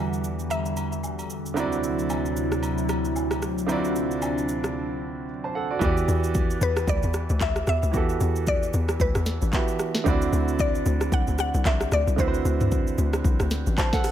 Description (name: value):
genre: amapiano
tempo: 113 BPM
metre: 4/4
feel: swing 58% on 16ths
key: E minor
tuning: A4 = 436 Hz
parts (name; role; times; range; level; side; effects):
- mallet-like synth pluck; melody; 0.0-1.3, 6.6-12.9 s; B4 to F#5; -29 LUFS; left 2 dB; chorus, tape echo
- clear concert grand piano; accompaniment; 0.0-14.1 s; D3 to A5; -28 LUFS; right 4 dB; none
- lush unison pad; sustained chords; 0.0-5.8 s; D2 to F#5; -28 LUFS; left 1 dB; chorus, sidechain pumping
- afro-pop drum kit; drums; 0.1-14.1 s; handclaps, hi-hat, kick drum, rim click, shaker, snare drum, toms; -27 LUFS; left 1 dB; none
- agogo bells and woodblock; percussion; 0.5-4.4 s; none; -36 LUFS; left 2 dB; none
- hollow log drum bass; bass; 5.8-13.8 s; A1 to E2; -25 LUFS; left 1 dB; none
room: light reverb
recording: none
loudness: -22 LUFS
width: side -10 dB against mid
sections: 0.0-5.8 A section; 5.8-14.1 B section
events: break 4.8-5.8; drop 5.8-14.1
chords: 0.0 Em9; 1.6 D9; 5.8 Em9; 10.1 D9